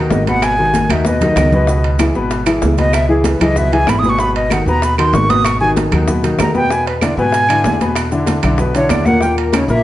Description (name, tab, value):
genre	Afro-Cuban jazz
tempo	191 BPM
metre	4/4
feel	straight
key	G# minor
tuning	A4 = 440 Hz
part	breathy silver concert flute	melody	0.0-9.8 s	G#4 to D#6	-17 LUFS	right 1 dB	none
part	warm upright piano	accompaniment	0.0-9.8 s	A#2 to B4	-17 LUFS	left 2 dB	none
part	upright bass	bass	0.0-9.8 s	G#1 to G#2	-18 LUFS	right 1 dB	none
part	bongos	percussion	0.1-9.7 s	none	-26 LUFS	left 4 dB	none
part	congas	percussion	0.1-9.8 s	none	-21 LUFS	left 2 dB	none
part	maracas	percussion	0.1-9.8 s	none	-35 LUFS	right 5 dB	none
part	timbales	percussion	0.1-9.7 s	none	-25 LUFS	right 6 dB	none
part	claves	percussion	0.4-9.7 s	none	-29 LUFS	right 3 dB	none
room	wet large studio reverb, RT60 1.2 s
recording	nothing above 10.4 kHz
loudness	-12 LUFS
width	side -14 dB against mid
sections	0.0-9.8 A section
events	flute solo 0.0-9.8; drum fill 0.7-1.7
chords	0.0 G#m7; 1.7 C#m7; 4.2 G#m7; 6.7 E7; 9.2 D#5